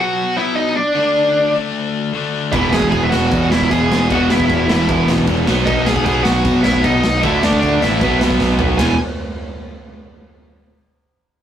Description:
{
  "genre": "punk rock",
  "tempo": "153 BPM",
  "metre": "4/4",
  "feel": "straight",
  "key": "E major",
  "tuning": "A4 = 440 Hz",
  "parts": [
    { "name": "high-gain lead guitar", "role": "melody", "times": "0.0-9.0 s", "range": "D4 to G#5", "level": "-18 LUFS", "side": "equal", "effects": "distortion" },
    { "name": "cranked stack guitar", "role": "riff", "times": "0.0-9.0 s", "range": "E2 to D4", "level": "-21 LUFS", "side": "left 4 dB", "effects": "overdrive" },
    { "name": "distorted electric guitar", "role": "riff", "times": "2.5-9.0 s", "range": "E2 to D4", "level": "-21 LUFS", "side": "right 5 dB", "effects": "distortion" },
    { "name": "overdriven electric guitar", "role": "riff", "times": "2.5-9.0 s", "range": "E2 to D4", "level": "-21 LUFS", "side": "equal", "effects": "none" },
    { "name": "fuzz picked electric bass", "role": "bass", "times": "2.5-9.0 s", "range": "E1 to B2", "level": "-20 LUFS", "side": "equal", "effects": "overdrive" },
    { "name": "raw garage drum kit", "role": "drums", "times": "2.5-8.9 s", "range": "crash cymbal, kick drum, ride cymbal, snare drum, toms", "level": "-20 LUFS", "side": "equal", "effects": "none" }
  ],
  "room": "moderate small room reverb, RT60 0.5 s",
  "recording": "rough rehearsal-room recording",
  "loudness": "-13 LUFS",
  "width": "side -10 dB against mid",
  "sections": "0.0-8.8 A section; 8.8-10.4 B section",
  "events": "drum fill 8.4-8.8",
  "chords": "0.0 B; 1.0 D5; 2.5 E; 5.5 B; 7.2 D5; 8.0 B5; 8.8 E5",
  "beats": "0.18 0.57 | 0.97 1.36 1.75 2.14 | 2.54 2.93 3.32 3.71 | 4.10 4.49 4.88 5.28 | 5.67 6.06 6.45 6.84 | 7.23 7.62 8.01 8.40 | 8.79"
}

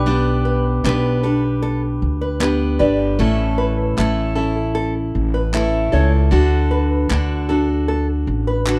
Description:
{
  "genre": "acoustic pop",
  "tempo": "77 BPM",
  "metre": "4/4",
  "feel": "straight",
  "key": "D major",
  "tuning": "A4 = 440 Hz",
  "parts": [
    { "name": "glockenspiel with brass mallets", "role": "second line", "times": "0.0-1.0 s", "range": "G5 to D6", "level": "-32 LUFS", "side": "equal", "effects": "none" },
    { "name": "picked steel-string acoustic guitar", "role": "accompaniment", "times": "0.0-8.8 s", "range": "A2 to B4", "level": "-22 LUFS", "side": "equal", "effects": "none" },
    { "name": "upright bass", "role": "bass", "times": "0.0-8.8 s", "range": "G1 to D2", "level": "-22 LUFS", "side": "equal", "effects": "none" },
    { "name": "nylon-string guitar", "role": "arpeggios", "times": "0.5-8.7 s", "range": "A4 to D5", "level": "-27 LUFS", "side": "equal", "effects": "none" },
    { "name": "group handclap", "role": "percussion", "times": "0.9-8.8 s", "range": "none", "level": "-29 LUFS", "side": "equal", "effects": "none" }
  ],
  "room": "light reverb",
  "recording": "dry, close 1970s-style studio recording",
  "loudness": "-18 LUFS",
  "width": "mono",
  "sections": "0.0-8.8 A section",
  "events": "none",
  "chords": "0.0 G/B; 3.2 A; 6.3 D",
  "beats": "| 0.06 0.84 1.62 2.41 | 3.19 3.97 4.75 5.53 | 6.32 7.10 7.88 8.66"
}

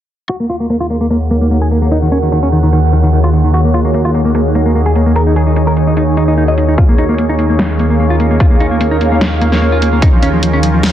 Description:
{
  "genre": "heavy wobble dubstep",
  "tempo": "148 BPM",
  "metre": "4/4",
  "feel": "half-time",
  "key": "Eb minor",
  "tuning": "A4 = 440 Hz",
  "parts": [
    { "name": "clean electric guitar", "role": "melody", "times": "0.3-10.9 s", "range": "Eb3 to Eb5", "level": "-15 LUFS", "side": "equal", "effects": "none" },
    { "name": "evolving wavetable pad", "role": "sustained chords", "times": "0.7-10.9 s", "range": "Eb2 to Bb4", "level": "-12 LUFS", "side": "equal", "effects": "phaser, built-in reverb, sidechain pumping" },
    { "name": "dubstep drum kit", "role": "drums", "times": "0.3-10.9 s", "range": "hi-hat, snare drum", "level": "-19 LUFS", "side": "equal", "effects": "low-pass filter on hats, low-pass filter on snare" },
    { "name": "airy breathy pad", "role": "texture", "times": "0.3-10.9 s", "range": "Eb4 to Gb5", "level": "-18 LUFS", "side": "left 1 dB", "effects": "chorus, phaser, sidechain pumping" },
    { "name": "electronic kick drum", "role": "drums", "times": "6.8-10.1 s", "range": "none", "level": "-9 LUFS", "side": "equal", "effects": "none" }
  ],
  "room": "moderate lush hall reverb, RT60 1.8 s",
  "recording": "dense, heavily limited modern master, low-pass filter",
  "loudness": "-9 LUFS",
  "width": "side -11 dB against mid",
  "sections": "0.3-10.9 A section",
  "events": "filter sweep on drum 0.3-10.9; filter sweep on ambient pad 0.3-10.9; filter sweep 0.3-10.9",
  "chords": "0.3 Ebm; 6.8 Bbm/Eb",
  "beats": "| 0.29 0.70 1.10 1.51 | 1.92 2.32 2.73 3.13 | 3.54 3.94 4.35 4.75 | 5.16 5.56 5.97 6.38 | 6.78 7.18 7.59 8.00 | 8.40 8.81 9.21 9.62 | 10.02 10.43 10.83"
}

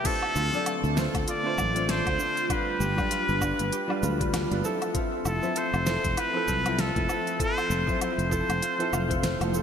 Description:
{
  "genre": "sunset chillout",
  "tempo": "98 BPM",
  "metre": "4/4",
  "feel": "swing 58% on 16ths",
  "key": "F lydian",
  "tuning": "A4 = 438 Hz",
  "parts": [
    { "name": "trumpet with straight mute", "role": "melody", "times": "0.0-9.5 s", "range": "A4 to D5", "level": "-29 LUFS", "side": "equal", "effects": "digital delay" },
    { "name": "warm baby grand piano", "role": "accompaniment", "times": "0.0-9.6 s", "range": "F3 to E5", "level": "-32 LUFS", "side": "equal", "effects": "auto-pan, ping-pong delay" },
    { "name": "airy breathy pad", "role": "sustained chords", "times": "0.0-9.6 s", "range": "D3 to B4", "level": "-35 LUFS", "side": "left 1 dB", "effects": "chorus, phaser" },
    { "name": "concert harp", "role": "arpeggios", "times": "0.0-9.6 s", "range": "D4 to F5", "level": "-36 LUFS", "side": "right 1 dB", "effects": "ping-pong delay" },
    { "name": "electronic kick drum", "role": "drums", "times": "0.1-9.2 s", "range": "none", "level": "-32 LUFS", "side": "equal", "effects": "none" },
    { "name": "smooth R&B drum kit", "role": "drums", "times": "0.1-9.6 s", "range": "cabasa, crash cymbal, hi-hat, snare drum, woodblock", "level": "-34 LUFS", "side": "left 1 dB", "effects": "gated reverb" },
    { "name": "sustaining fretless electric bass", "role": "bass", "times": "0.4-9.6 s", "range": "F1 to D2", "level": "-29 LUFS", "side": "equal", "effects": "none" },
    { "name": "congas", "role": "percussion", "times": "0.4-9.6 s", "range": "none", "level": "-39 LUFS", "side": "left 2 dB", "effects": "none" }
  ],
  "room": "moderate lush hall reverb, RT60 2.7 s",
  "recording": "bright 1980s-style digital production",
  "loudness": "-24 LUFS",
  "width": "side -8 dB against mid",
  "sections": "0.1-9.6 A section",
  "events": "none",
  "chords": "0.1 Dm7; 2.5 G7; 4.6 Fmaj7",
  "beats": "| 0.05 0.66 1.27 1.89 | 2.50 3.11 3.72 4.34 | 4.95 5.56 6.17 6.79 | 7.40 8.01 8.62 9.23"
}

